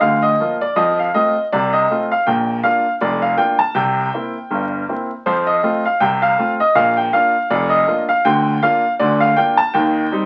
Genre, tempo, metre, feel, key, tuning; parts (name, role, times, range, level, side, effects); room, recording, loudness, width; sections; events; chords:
ragtime piano; 80 BPM; 2/4; swing 55% on 16ths; Bb major; A4 = 440 Hz
clear upright piano; solo; 0.0-10.3 s; F1 to A5; -17 LUFS; equal
moderate club reverb, RT60 0.5 s; very old 78 rpm record, vinyl crackle; -17 LUFS; mono
0.0-10.3 A section
0.0 Bb/D; 0.8 F; 2.3 Bb; 3.8 C7; 5.3 F; 6.7 Bb; 8.2 Bb/D; 9.7 Cm/Eb